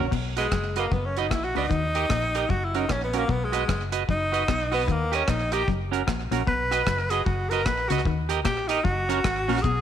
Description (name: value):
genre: ska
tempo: 151 BPM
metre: 4/4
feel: swing 61% on 8ths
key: B major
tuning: A4 = 440 Hz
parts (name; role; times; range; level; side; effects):
- clean electric guitar; accompaniment; 0.0-9.6 s; C#4 to D#5; -29 LUFS; right 9 dB; none
- semi-hollow electric guitar; riff; 0.0-9.8 s; F#2 to D#3; -33 LUFS; left 10 dB; none
- vintage muted fingered electric bass; bass; 0.0-9.8 s; F#1 to D#2; -30 LUFS; equal; transformer saturation
- deep reggae drum kit; drums; 0.1-9.8 s; crash cymbal, hi-hat, kick drum, rim click; -29 LUFS; equal; none
- clear tenor saxophone; melody; 0.4-9.8 s; G#3 to B4; -27 LUFS; equal; none
- group handclap; percussion; 0.5-9.4 s; none; -42 LUFS; right 8 dB; none
room: moderate echo chamber reverb, RT60 1.7 s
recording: 1960s-style stereo with parts hard left and right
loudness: -22 LUFS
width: side -10 dB against mid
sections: 0.1-9.8 A section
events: tenor saxophone solo 0.1-9.8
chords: 0.1 B; 1.7 D#; 2.5 F#; 3.3 B; 4.9 D#; 5.7 F#; 6.5 B; 8.1 D#; 8.9 F#